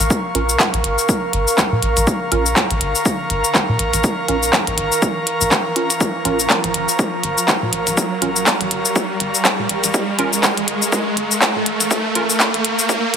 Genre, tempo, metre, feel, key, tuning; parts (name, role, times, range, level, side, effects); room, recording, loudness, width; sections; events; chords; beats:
minimal techno; 122 BPM; 4/4; swing 58% on 16ths; Bb minor; A4 = 440 Hz
rubbery square bass; bass; 0.0-13.2 s; Ab1 to Bb2; -23 LUFS; equal; tube saturation, sidechain pumping
minimal click drum kit; drums; 0.0-13.2 s; cabasa, handclaps, hi-hat; -18 LUFS; left 1 dB; overdrive
riser; sound effects; 1.0-13.2 s; -24 LUFS; right 2 dB
airy breathy pad; texture; 0.0-13.2 s; Bb4 to Db6; -23 LUFS; left 1 dB; chorus, sidechain pumping
bubbling stepped-filter texture; texture; 0.0-13.2 s; Bb4; -28 LUFS; right 4 dB; chorus, built-in reverb, sidechain pumping
electronic kick drum; drums; 0.1-13.0 s; -21 LUFS; equal; overdrive, high-pass filter on kick, high-pass filter on room
wavetable chord stab; stabs; 0.3-12.2 s; Db4 to Bb4; -25 LUFS; right 3 dB; phaser, tape echo
moderate lush hall reverb, RT60 2.5 s; dense, heavily limited modern master, high-pass filter; -15 LUFS; side -7 dB against mid
0.0-13.2 A section
build-up 0.0-13.2; filter sweep on synth stab 0.0-13.2; riser 1.0-13.2
0.0 Bbm
| 0.10 0.60 1.09 1.58 | 2.07 2.56 3.06 3.55 | 4.04 4.53 5.02 5.51 | 6.01 6.50 6.99 7.48 | 7.97 8.46 8.96 9.45 | 9.94 10.43 10.92 11.42 | 11.91 12.40 12.89